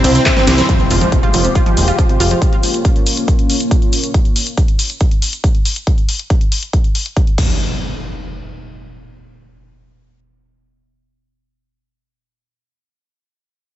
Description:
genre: uplifting trance.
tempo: 139 BPM.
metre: 4/4.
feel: straight.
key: F minor.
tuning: A4 = 440 Hz.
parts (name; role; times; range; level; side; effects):
supersaw stab; melody; 0.0-0.7 s; C4 to E5; -20 LUFS; right 1 dB; phaser, sidechain pumping, analog delay.
clear concert grand piano; second line; 0.0-0.6 s; C3 to C4; -24 LUFS; left 5 dB; none.
lush unison pad; sustained chords; 0.0-4.1 s; G3 to Db5; -19 LUFS; left 1 dB; chorus, phaser, sidechain pumping.
analog pluck; arpeggios; 0.0-2.4 s; G2 to F4; -20 LUFS; right 2 dB; chorus, cassette tape, sidechain pumping, diffuse ambient delay.
plucky analog bass; bass; 0.0-2.3 s; Eb1 to C2; -15 LUFS; equal; sidechain pumping.
big-room dance drum kit; drums; 0.0-7.5 s; crash cymbal, handclaps, hi-hat, ride cymbal, snare drum, toms; -20 LUFS; left 2 dB; small room ambience.
cabasa; percussion; 0.0-5.8 s; none; -27 LUFS; right 4 dB; none.
electronic kick drum; drums; 0.3-7.5 s; none; -14 LUFS; equal; small room ambience.
impact; sound effects; 0.7-2.4, 7.4-11.8 s; none; -24 LUFS; equal; none.
room: light reverb, digital ambience.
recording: nothing above 7.9 kHz.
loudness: -12 LUFS.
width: side -13 dB against mid.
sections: 0.7-7.6 A section; 7.6-11.1 B section.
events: drum fill 0.3-0.7; impact 0.7-2.4; filter sweep on analog synth pad 0.7-4.1.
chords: 0.0 C; 0.7 Fmadd9; 2.4 Bbm; 4.1 N.C..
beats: 0.26 | 0.69 1.12 1.55 1.99 | 2.42 2.85 3.28 3.71 | 4.14 4.58 5.01 5.44 | 5.87 6.30 6.73 7.17 | 7.60 8.03 8.46 8.89 | 9.32 9.76 10.19 10.62.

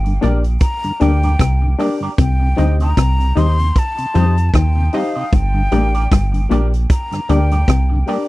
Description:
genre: roots reggae.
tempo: 76 BPM.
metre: 4/4.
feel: swing 57% on 16ths.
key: G minor.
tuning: A4 = 440 Hz.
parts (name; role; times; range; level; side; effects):
breathy mellow silver concert flute; melody; 0.0-8.1 s; F5 to C6; -24 LUFS; left 1 dB; tape echo.
clean electric guitar; riff; 0.0-7.9 s; G2 to F3; -22 LUFS; left 5 dB; tube saturation, spring reverb.
round analog bass; bass; 0.0-8.0 s; G1 to F2; -15 LUFS; equal; none.
mellow tonewheel organ; accompaniment; 0.1-8.2 s; G2 to Eb4; -22 LUFS; left 1 dB; chorus vibrato, slow rotary speaker.
vintage drum kit; drums; 0.1-8.3 s; hi-hat, kick drum, rim click; -16 LUFS; equal; none.
electric guitar with an envelope filter; accompaniment; 0.2-8.2 s; D4 to Eb5; -28 LUFS; right 3 dB; lush chorus, tape echo.
barky reed electric piano; stabs; 0.2-8.3 s; D4 to Eb5; -22 LUFS; left 4 dB; overdrive.
room: little or no reverb.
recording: dry, close 1970s-style studio recording.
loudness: -13 LUFS.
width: side -18 dB against mid.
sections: 0.0-8.3 A section.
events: none.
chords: 0.0 Gm; 2.2 Cm; 5.3 Gm.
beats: 0.60 1.39 | 2.18 2.96 3.75 4.53 | 5.32 6.11 6.89 7.68.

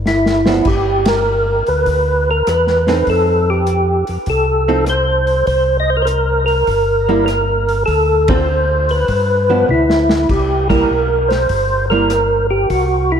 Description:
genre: soul jazz organ trio.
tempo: 100 BPM.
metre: 4/4.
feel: swing 68% on 8ths.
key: C mixolydian.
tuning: A4 = 440 Hz.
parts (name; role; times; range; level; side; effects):
mellow tonewheel organ; bass; 0.0-13.2 s; G1 to G2; -19 LUFS; left 1 dB; overdrive, chorus vibrato, slow rotary speaker.
percussive tonewheel organ; melody; 0.1-13.2 s; E4 to Eb5; -14 LUFS; equal; slow rotary speaker, chorus vibrato, tape echo.
warm soul drum kit; drums; 0.1-12.9 s; crash cymbal, hi-hat, kick drum, ride cymbal, rim click, snare drum, toms; -22 LUFS; left 1 dB; none.
archtop guitar, miked and amplified; accompaniment; 0.5-12.1 s; D3 to A4; -20 LUFS; right 4 dB; wide subtle chorus.
room: moderate lush hall reverb, RT60 2.3 s.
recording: dreamy mix soaked in reverb.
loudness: -12 LUFS.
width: side -8 dB against mid.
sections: 0.0-10.3 A section; 10.3-13.2 A section.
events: drum fill 0.1-0.7, 9.7-10.3; band accent 1.0-1.3, 8.2-8.5, 10.6-10.9.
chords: 0.0 C (rootless); 0.7 G; 3.1 F7; 5.5 C7(no3); 7.9 Dm7; 9.1 G7; 10.3 C7(no3).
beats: 0.06 | 0.66 1.27 1.87 2.47 | 3.07 3.67 4.28 4.88 | 5.48 6.08 6.68 7.29 | 7.89 8.49 9.09 9.69 | 10.30 10.90 11.50 12.10 | 12.71.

